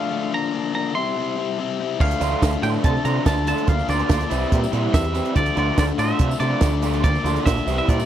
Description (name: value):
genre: indie rock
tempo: 143 BPM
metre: 4/4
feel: straight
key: D minor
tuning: A4 = 437 Hz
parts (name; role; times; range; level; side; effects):
- twangy electric guitar; melody; 0.0-8.1 s; D5 to C6; -26 LUFS; right 1 dB; slapback echo
- biting overdriven guitar; riff; 0.0-8.1 s; C3 to E4; -24 LUFS; left 8 dB; none
- growling picked electric bass; bass; 2.0-8.0 s; Bb1 to C3; -24 LUFS; right 1 dB; overdrive
- compact cocktail drum kit; drums; 2.0-8.0 s; crash cymbal, hi-hat, kick drum, snare drum; -21 LUFS; right 1 dB; none
- raw garage guitar; riff; 2.2-8.0 s; D3 to F4; -26 LUFS; right 9 dB; overdrive, ensemble chorus
- tambourine; percussion; 2.2-8.1 s; none; -42 LUFS; right 19 dB; none
room: little or no reverb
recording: dry, close 1970s-style studio recording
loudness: -18 LUFS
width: side -10 dB against mid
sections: 0.0-8.1 A section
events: none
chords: 0.3 Bb/D; 1.0 C; 2.0 Dm; 3.7 Bb/D; 4.3 Cadd9; 5.4 Dm; 7.0 Bb/D